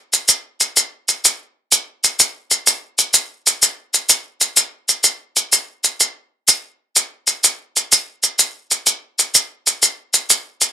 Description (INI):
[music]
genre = southern african traditional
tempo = 126 BPM (dotted quarters)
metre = 12/8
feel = straight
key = none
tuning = none
[part]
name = maracas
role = percussion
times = 0.1-10.7 s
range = none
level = -11 LUFS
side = equal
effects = none
[sound]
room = little or no reverb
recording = dark, warm production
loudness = -14 LUFS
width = side -9 dB against mid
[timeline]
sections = 0.8-10.7 A section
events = none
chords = none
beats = 0.29 | 0.77 1.24 1.72 2.19 | 2.67 3.15 3.62 4.10 | 4.57 5.05 5.53 6.00 | 6.48 6.96 7.43 7.91 | 8.39 8.87 9.34 9.82 | 10.30